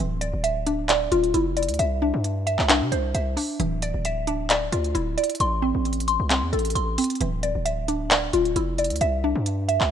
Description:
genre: hip hop, trap.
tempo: 133 BPM.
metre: 4/4.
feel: half-time.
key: D minor.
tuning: A4 = 440 Hz.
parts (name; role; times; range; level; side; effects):
mallet-like synth pluck; arpeggios; 0.0-9.9 s; E3 to C6; -24 LUFS; equal; chorus, phaser, ping-pong delay.
distorted 808-style bass; bass; 0.0-9.9 s; D1 to C3; -26 LUFS; equal; distortion.
trap drum kit; drums; 0.2-9.9 s; handclaps, hi-hat; -25 LUFS; equal; none.
room: light reverb, digital ambience.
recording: rough home demo mix.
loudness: -21 LUFS.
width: side -9 dB against mid.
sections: 0.0-9.9 A section.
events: none.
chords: 0.0 Dmadd9; 1.8 Cadd9; 3.6 Dmadd9; 5.4 Am; 7.2 Dmadd9; 9.0 Cadd9.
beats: 0.44 0.89 1.34 | 1.79 2.24 2.69 3.15 | 3.60 4.05 4.50 4.95 | 5.40 5.85 6.30 6.75 | 7.21 7.66 8.11 8.56 | 9.01 9.46.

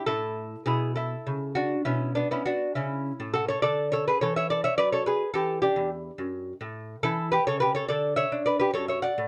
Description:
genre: classical, baroque-style dance for lute.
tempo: 69 BPM (dotted quarters).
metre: 6/8.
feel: uneven beats, rubato.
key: A major.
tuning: A4 = 440 Hz.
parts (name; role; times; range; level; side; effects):
lute; solo; 0.0-9.3 s; E2 to F#5; -27 LUFS; equal; none.
room: light reverb.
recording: dark, warm production.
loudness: -27 LUFS.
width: mono.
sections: 0.1-9.3 A section.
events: none.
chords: 0.1 A; 1.9 Bmadd9; 2.8 A/C#; 3.6 D; 5.3 Emadd11; 6.2 F#m; 7.0 A7/E; 7.9 D5; 8.7 F#m.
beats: | 0.07 0.96 | 1.86 2.75 | 3.63 4.50 | 5.34 6.18 | 7.03 7.89 | 8.74.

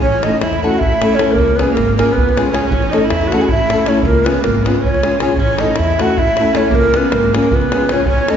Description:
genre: balkan folk, Balkan wedding band.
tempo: 314 BPM (eighths).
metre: 7/8.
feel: straight.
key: unclear.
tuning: A4 = 439 Hz.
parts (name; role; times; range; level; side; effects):
breathy ney; melody; 0.0-8.4 s; A#4 to G#5; -17 LUFS; equal; none.
clear viola; second line; 0.0-8.4 s; A#3 to G#4; -20 LUFS; right 2 dB; none.
upright bass; bass; 0.0-8.3 s; G#1 to E2; -20 LUFS; equal; none.
davul; percussion; 0.0-8.4 s; none; -20 LUFS; equal; none.
nylon-string guitar; accompaniment; 0.2-8.4 s; G#3 to A4; -18 LUFS; left 2 dB; none.
room: wet concert hall reverb, RT60 1.9 s.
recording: heard from further back in the room, nothing above 7.6 kHz.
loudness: -12 LUFS.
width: side -8 dB against mid.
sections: 0.0-5.4 A section; 5.4-8.4 A section.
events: none.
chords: 0.0 A; 1.4 C#7; 2.7 A; 4.0 C#; 5.4 A; 6.7 C#7.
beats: | 0.03 0.22 0.41 0.61 0.80 0.99 1.18 | 1.37 1.56 1.75 1.95 2.14 2.33 2.52 | 2.71 2.90 3.09 3.28 3.47 3.67 3.86 | 4.05 4.24 4.43 4.62 4.81 5.00 5.19 | 5.38 5.58 5.77 5.96 6.15 6.34 6.53 | 6.72 6.91 7.11 7.30 7.49 7.68 7.87 | 8.06 8.25.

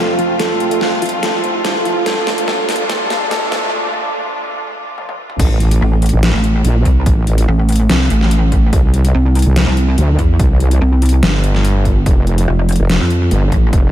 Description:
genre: heavy wobble dubstep.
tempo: 144 BPM.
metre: 4/4.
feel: half-time.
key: unclear.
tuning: A4 = 440 Hz.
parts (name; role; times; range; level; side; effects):
mellow electric guitar; melody; 0.0-3.7 s; F3 to A4; -22 LUFS; left 1 dB; ping-pong delay.
rich symphonic string section; sustained chords; 0.0-5.4 s; F2 to F4; -25 LUFS; left 2 dB; sidechain pumping.
riser; sound effects; 1.0-3.7 s; none; -28 LUFS; right 1 dB; none.
deep dark ambient pad; texture; 0.0-3.7 s; F4 to A5; -22 LUFS; right 4 dB; chorus, built-in reverb, sidechain pumping.
dubstep drum kit; drums; 0.2-13.8 s; crash cymbal, hi-hat, snare drum, toms; -21 LUFS; left 1 dB; overdrive.
wobble bass; bass; 5.4-13.9 s; F1 to D2; -12 LUFS; equal; chorus, overdrive.
electronic kick drum; drums; 5.4-13.8 s; none; -13 LUFS; equal; none.
pulsing pluck wobble bass; bass; 5.8-13.7 s; F1 to F2; -12 LUFS; equal; chorus, overdrive.
room: moderate cathedral reverb, RT60 6.7 s.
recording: dreamy mix soaked in reverb, high-pass filter.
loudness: -11 LUFS.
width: side -12 dB against mid.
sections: 0.0-5.4 A section; 5.4-13.9 B section.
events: build-up 0.0-5.4; drum fill 0.0-3.7, 5.0-5.4; break 3.7-5.4; drop 5.4-13.9.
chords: 0.0 F; 2.1 Bb; 5.4 N.C.; 8.7 C5; 12.1 N.C..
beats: | 0.40 0.81 1.23 1.65 | 2.06 2.48 2.90 3.31 | 3.73 4.14 4.56 4.98 | 5.39 5.81 6.23 6.64 | 7.06 7.48 7.89 8.31 | 8.73 9.14 9.56 9.98 | 10.39 10.81 11.23 11.64 | 12.06 12.48 12.89 13.31 | 13.73.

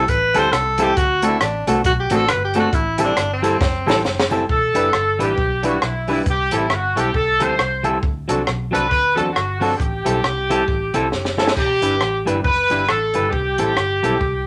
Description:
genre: ska.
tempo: 136 BPM.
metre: 4/4.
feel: swing 59% on 8ths.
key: D mixolydian.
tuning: A4 = 438 Hz.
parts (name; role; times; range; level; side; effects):
clear tenor saxophone; melody; 0.0-4.4 s; C4 to C5; -22 LUFS; equal; none.
clean electric guitar; accompaniment; 0.0-14.2 s; F#3 to B4; -24 LUFS; equal; none.
bright upright piano; stabs; 0.0-14.2 s; C4 to B4; -30 LUFS; equal; none.
vintage muted fingered electric bass; bass; 0.0-14.4 s; E1 to E2; -29 LUFS; equal; tube saturation.
compact cocktail drum kit; drums; 0.1-14.3 s; hi-hat, kick drum, rim click, snare drum, splash cymbal; -25 LUFS; equal; none.
cabasa; percussion; 0.1-4.4 s; none; -49 LUFS; equal; none.
clear horn section; melody; 4.5-14.5 s; E4 to C5; -22 LUFS; equal; none.
room: moderate small room reverb, RT60 0.5 s.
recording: none.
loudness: -19 LUFS.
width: mono.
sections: 0.0-4.5 A section; 4.5-14.5 B section.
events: tenor saxophone solo 0.0-4.5; drum fill 3.6-4.5, 11.1-11.6.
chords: 0.0 C6; 1.0 D7; 2.7 Am7; 4.5 Em7; 6.3 C6; 8.0 D7; 9.8 Am7; 11.6 Em7; 13.3 C6.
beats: 0.09 0.53 | 0.97 1.41 1.85 2.29 | 2.73 3.17 3.62 4.06 | 4.50 4.94 5.38 5.82 | 6.26 6.71 7.15 7.59 | 8.03 8.47 8.91 9.36 | 9.80 10.24 10.68 11.12 | 11.56 12.00 12.44 12.88 | 13.32 13.77 14.21.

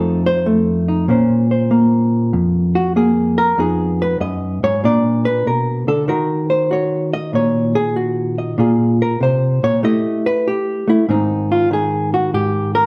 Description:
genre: solo jazz.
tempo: 96 BPM.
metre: 4/4.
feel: swing 67% on 8ths.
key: Bb minor.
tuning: A4 = 440 Hz.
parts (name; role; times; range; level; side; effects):
hollow-body jazz guitar; solo; 0.0-12.9 s; F2 to Eb5; -17 LUFS; equal; none.
room: wet stone room reverb, RT60 1.1 s.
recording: band playing live in one room.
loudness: -17 LUFS.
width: mono.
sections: 0.0-1.1 A section; 1.1-12.9 A section.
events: hollow-body jazz guitar solo 0.0-12.9.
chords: 0.0 F7; 1.1 Bbmadd9; 3.6 Fm7b5; 4.8 Bb; 6.1 Ebm; 8.6 Bbsus2; 9.8 A5; 11.1 Abmaj7.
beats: 0.45 | 1.07 1.70 2.32 2.95 | 3.57 4.20 4.82 5.45 | 6.07 6.70 7.33 7.95 | 8.58 9.20 9.83 10.45 | 11.08 11.70 12.33.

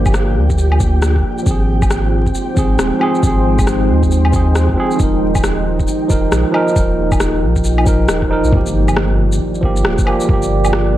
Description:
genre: future garage.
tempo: 136 BPM.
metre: 4/4.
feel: swing 62% on 16ths.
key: G phrygian.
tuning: A4 = 440 Hz.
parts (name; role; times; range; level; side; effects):
tine electric piano; accompaniment; 0.0-11.0 s; F3 to Bb4; -18 LUFS; right 2 dB; overdrive, sidechain pumping, analog delay.
deep dark ambient pad; sustained chords; 0.0-11.0 s; Ab3 to Eb5; -21 LUFS; equal; chorus, built-in reverb, sidechain pumping.
warm sub bass; bass; 0.0-11.0 s; D1 to Eb2; -16 LUFS; equal; sidechain pumping.
flickering grainy texture; texture; 0.0-8.5 s; G4 to G5; -29 LUFS; right 1 dB; built-in reverb.
electronic kick drum; drums; 0.1-10.4 s; none; -17 LUFS; equal; none.
electronic shaker, woodblock and rim click; drums; 0.1-10.8 s; none; -22 LUFS; left 1 dB; none.
impact; sound effects; 8.5-10.3 s; none; -25 LUFS; left 1 dB; none.
room: light reverb, digital ambience.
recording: vinyl crackle.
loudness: -12 LUFS.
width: side -13 dB against mid.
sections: 0.0-8.5 A section; 8.5-11.0 B section.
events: impact 8.5-10.3.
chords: 0.0 Gm7; 1.5 Ab6; 5.0 Ebsus2; 8.5 Gm7.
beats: 0.14 0.59 1.03 | 1.47 1.91 2.35 2.79 | 3.23 3.67 4.12 4.56 | 5.00 5.44 5.88 6.32 | 6.76 7.20 7.64 8.09 | 8.53 8.97 9.41 9.85 | 10.29 10.73.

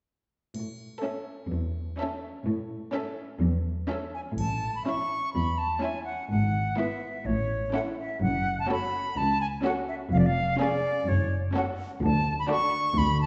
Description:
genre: cinematic, playful, whimsical film cue.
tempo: 126 BPM.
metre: 4/4.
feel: straight.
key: A major.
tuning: A4 = 440 Hz.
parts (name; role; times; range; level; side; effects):
rich studio cello section; bass; 0.5-13.3 s; C#2 to A2; -32 LUFS; equal; none.
triangle; percussion; 0.5-1.5, 4.4-5.3 s; none; -55 LUFS; equal; none.
warm studio violin section; melody; 1.0-12.8 s; G#4 to E5; -44 LUFS; equal; none.
rich studio violin section; second line; 1.0-12.9 s; E4 to A4; -39 LUFS; equal; none.
rich symphonic viola section; accompaniment; 1.0-12.8 s; B3 to D4; -36 LUFS; equal; none.
bright concert flute; second line; 4.1-13.3 s; C#5 to C#6; -31 LUFS; equal; none.
warm studio double bass section; bass; 4.4-13.3 s; E#1 to D2; -32 LUFS; equal; none.
room: wet scoring stage reverb, RT60 1.8 s.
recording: heard from further back in the room, nothing above 8.0 kHz.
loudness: -28 LUFS.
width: mono.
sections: 0.6-4.4 A section; 4.4-13.3 B section.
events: none.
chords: 0.6 A; 6.3 E/G#; 7.3 A; 8.2 F#m; 10.1 C#/E#; 11.1 F#m; 12.0 D.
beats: | 0.55 1.03 1.51 1.99 | 2.46 2.94 3.41 3.89 | 4.38 4.86 5.34 5.82 | 6.30 6.78 7.26 7.74 | 8.22 8.70 9.18 9.65 | 10.12 10.60 11.07 11.55 | 12.02 12.50 12.97.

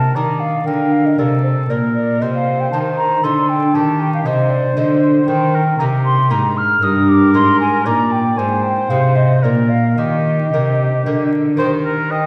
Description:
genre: classical, baroque-style sonata movement with continuo.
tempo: 116 BPM.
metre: 3/4.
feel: rubato.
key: Eb major from 5.3 s.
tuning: A4 = 440 Hz.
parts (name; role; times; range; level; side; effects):
warm oboe; melody; 0.0-12.3 s; G4 to Eb5; -25 LUFS; equal; none.
mellow hollow silver concert flute; second line; 0.0-12.3 s; C5 to F6; -21 LUFS; equal; none.
lute; accompaniment; 0.0-12.3 s; G2 to C5; -23 LUFS; equal; none.
rich cello; bass; 0.0-12.3 s; G2 to Eb3; -19 LUFS; equal; none.
room: wet recital hall reverb, RT60 1.6 s.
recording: heard from further back in the room, vinyl crackle.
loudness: -16 LUFS.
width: mono.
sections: 0.0-11.6 A section.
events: none.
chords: 0.0 Bb; 2.2 Cm; 5.3 Eb; 6.8 Eb/G; 8.4 Ab; 9.4 Bb; 10.0 Eb.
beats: 0.15 | 0.67 1.18 1.70 | 2.22 2.73 3.24 | 3.75 4.26 4.76 | 5.28 5.79 6.30 | 6.82 7.34 7.86 | 8.38 8.90 9.43 | 9.98 10.53 11.06 | 11.60 12.12.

